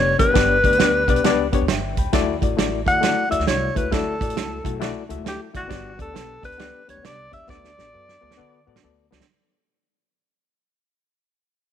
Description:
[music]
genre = uptempo 1960s-style soul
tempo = 134 BPM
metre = 4/4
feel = swing 64% on 8ths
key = D major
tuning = A4 = 440 Hz
[part]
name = mellow alto saxophone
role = melody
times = 0.0-8.8 s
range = F#4 to F#5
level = -21 LUFS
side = left 1 dB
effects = none
[part]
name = barky reed electric piano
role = accompaniment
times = 0.0-9.2 s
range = A3 to B5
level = -25 LUFS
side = left 11 dB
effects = overdrive, fast tremolo
[part]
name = upright bass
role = bass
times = 0.0-9.2 s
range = F1 to D3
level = -29 LUFS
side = equal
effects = none
[part]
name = natural country drum kit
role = drums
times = 0.2-9.3 s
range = hi-hat, kick drum, snare drum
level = -23 LUFS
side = right 4 dB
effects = none
[sound]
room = light reverb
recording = 1960s-style stereo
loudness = -17 LUFS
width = side -9 dB against mid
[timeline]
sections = 0.0-9.3 A section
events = fade-out 0.0-9.3; drum fill 7.5-9.3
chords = 0.0 G; 2.1 Dadd9; 5.7 G; 7.5 D6

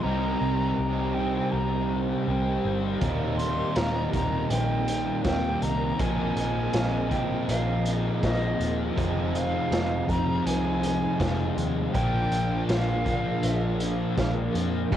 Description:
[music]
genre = rock, shoegaze and dream pop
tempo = 81 BPM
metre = 4/4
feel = straight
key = unclear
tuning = A4 = 440 Hz
[part]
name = silver concert flute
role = melody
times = 0.0-15.0 s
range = Eb5 to C6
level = -32 LUFS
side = equal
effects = tape echo
[part]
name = string machine, violas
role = sustained chords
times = 0.0-15.0 s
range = C4 to F5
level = -35 LUFS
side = equal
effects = ensemble chorus, cassette tape
[part]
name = electric guitar through a small old amp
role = arpeggios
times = 0.0-15.0 s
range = Eb2 to G4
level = -39 LUFS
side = right 7 dB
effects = none
[part]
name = biting overdriven guitar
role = riff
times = 0.0-15.0 s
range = Eb2 to G4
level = -31 LUFS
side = right 7 dB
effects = reverse reverb, cassette tape
[part]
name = thick fuzz guitar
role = riff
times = 0.0-15.0 s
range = Eb2 to C4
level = -29 LUFS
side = left 6 dB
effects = distortion, ensemble chorus, cassette tape
[part]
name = vintage muted picked electric bass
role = bass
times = 0.0-15.0 s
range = Eb1 to F2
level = -31 LUFS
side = equal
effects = tube saturation
[part]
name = raw garage drum kit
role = drums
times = 3.0-15.0 s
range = crash cymbal, hi-hat, kick drum, snare drum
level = -31 LUFS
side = equal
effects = cassette tape
[part]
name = biting overdriven guitar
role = riff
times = 14.9-15.0 s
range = F2 to C3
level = -30 LUFS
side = right 2 dB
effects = cassette tape
[sound]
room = light reverb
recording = home recording on cassette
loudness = -24 LUFS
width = side -10 dB against mid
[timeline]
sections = 0.0-14.9 A section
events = none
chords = 0.0 Cm7; 3.0 Eb6; 6.0 Bb9sus4; 9.0 Fm7; 11.9 Bb7

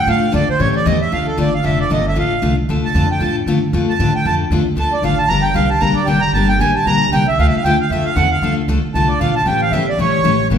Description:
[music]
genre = acoustic string swing (jazz manouche)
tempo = 230 BPM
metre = 4/4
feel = swing 57% on 8ths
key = D minor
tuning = A4 = 439 Hz
[part]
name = accordion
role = melody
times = 0.0-10.5 s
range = A4 to Bb5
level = -17 LUFS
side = right 2 dB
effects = none
[part]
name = upright bass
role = bass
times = 0.0-10.6 s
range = F1 to A2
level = -20 LUFS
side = equal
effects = none
[part]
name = picked steel-string acoustic guitar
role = accompaniment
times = 0.1-10.6 s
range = C#3 to A4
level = -17 LUFS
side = left 3 dB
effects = none
[sound]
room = wet large studio reverb, RT60 1.3 s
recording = band playing live in one room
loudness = -13 LUFS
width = side -8 dB against mid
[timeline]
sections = 0.0-1.1 A section; 1.1-10.6 A section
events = accordion solo 0.0-10.6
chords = 0.0 Dm; 0.6 A7; 1.1 Dm; 5.3 Gm; 7.4 Dm; 9.5 A7

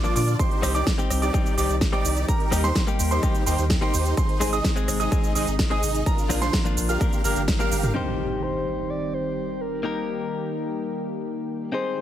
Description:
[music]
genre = EDM, festival progressive house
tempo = 127 BPM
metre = 4/4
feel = straight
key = C minor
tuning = A4 = 440 Hz
[part]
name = direct-recorded clean electric guitar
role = accompaniment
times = 0.0-12.0 s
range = F3 to C5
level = -30 LUFS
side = left 4 dB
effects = sidechain pumping, ping-pong delay
[part]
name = lush unison pad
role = sustained chords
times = 0.0-12.0 s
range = C3 to Ab4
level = -33 LUFS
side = right 1 dB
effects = chorus, sidechain pumping
[part]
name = clear concert grand piano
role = arpeggios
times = 0.0-7.9 s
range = Bb5 to F6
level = -30 LUFS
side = right 4 dB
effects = sidechain pumping, ping-pong delay
[part]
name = dense compressed supersaw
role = riff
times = 0.0-7.9 s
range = D4 to F5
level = -30 LUFS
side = right 1 dB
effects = sidechain pumping, ping-pong delay
[part]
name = big-room dance drum kit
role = drums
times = 0.0-7.9 s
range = cabasa, hi-hat, rim click, snare drum, toms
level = -29 LUFS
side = right 1 dB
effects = low-pass filter on hats, low-pass filter on perc, low-pass filter on snare, low-pass filter on toms
[part]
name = saturated sub bass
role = bass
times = 0.2-7.9 s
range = G1 to Bb2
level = -25 LUFS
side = equal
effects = sidechain pumping
[part]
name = electronic kick drum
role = drums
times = 0.4-7.6 s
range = none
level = -24 LUFS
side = equal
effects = none
[part]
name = breathy flute-like synth lead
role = melody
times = 8.0-12.0 s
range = G4 to D5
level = -30 LUFS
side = left 2 dB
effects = chorus, ping-pong delay
[part]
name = impact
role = sound effects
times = 8.0-9.8 s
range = none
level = -33 LUFS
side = equal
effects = none
[sound]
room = light reverb, digital ambience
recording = none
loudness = -21 LUFS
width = side -11 dB against mid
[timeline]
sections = 0.0-8.0 A section; 8.0-12.0 B section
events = drop 0.0-8.0; drum fill 7.5-8.0; band accent 7.5; impact 8.0-9.8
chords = 0.4 Cm; 2.3 Eb; 4.2 Ab; 6.1 Bb; 7.0 Gm; 8.0 Cm; 9.8 Eb

